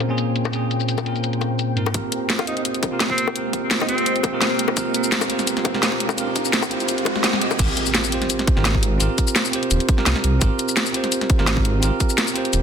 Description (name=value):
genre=liquid drum and bass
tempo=170 BPM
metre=4/4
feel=swing 53% on 16ths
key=Ab major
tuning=A4 = 440 Hz
part: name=bell-like tine electric piano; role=accompaniment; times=0.0-12.6 s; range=Ab2 to Eb5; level=-24 LUFS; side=right 1 dB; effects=low-pass filter, tape echo
part: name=ethereal airy pad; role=sustained chords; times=0.0-7.6 s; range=Ab3 to G5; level=-29 LUFS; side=right 1 dB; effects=ensemble chorus, built-in reverb, sidechain pumping
part: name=drum and bass drum kit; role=drums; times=0.0-12.6 s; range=crash cymbal, hi-hat, shaker, snare drum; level=-22 LUFS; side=left 1 dB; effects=overdrive, low-pass filter on hats, low-pass filter on perc, low-pass filter on snare, low-pass filter on cymbals
part: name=bongos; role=percussion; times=0.0-7.6 s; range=none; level=-29 LUFS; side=left 8 dB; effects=none
part: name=electronic kick drum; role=drums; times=1.9-12.1 s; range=none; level=-20 LUFS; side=equal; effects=overdrive, high-pass filter on kick
part: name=riser, swell and impact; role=sound effects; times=4.9-9.0 s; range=none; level=-29 LUFS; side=right 1 dB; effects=none
part: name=breathy alto saxophone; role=melody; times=2.4-4.2 s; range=C4 to F4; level=-26 LUFS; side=equal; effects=low-pass filter, ping-pong delay
part: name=swelling detuned saw bass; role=bass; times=7.6-12.6 s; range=Eb1 to C2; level=-20 LUFS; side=equal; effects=none
room=moderate concert hall reverb, RT60 1.9 s, digital ambience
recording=dense, heavily limited modern master, low-pass filter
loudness=-18 LUFS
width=side -7 dB against mid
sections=0.0-1.9 A section; 1.9-7.6 B section; 7.6-12.6 C section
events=build-up 1.9-7.6; filter sweep on tine electric piano 1.9-7.6; riser 4.9-7.6; swell 6.9-7.6; drop 7.6-12.6; impact 7.6-9.0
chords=0.0 Bbm9; 1.8 Abmaj13